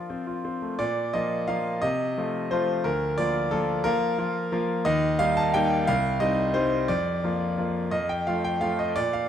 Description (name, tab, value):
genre	classical-period piano sonatina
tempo	59 BPM (dotted quarters)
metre	6/8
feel	rubato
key	Bb major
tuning	A4 = 440 Hz
part	bright concert grand piano	solo	0.0-9.3 s	C2 to A5	-23 LUFS	equal	none
room	moderate recital hall reverb, RT60 1.7 s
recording	close, detailed microphones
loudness	-23 LUFS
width	side -9 dB against mid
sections	0.8-9.3 A section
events	none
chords	0.0 F; 0.8 Bb5; 1.8 F7/C; 2.9 Bb/D; 4.9 Eb; 5.9 Cm; 6.9 Bb/F; 7.9 F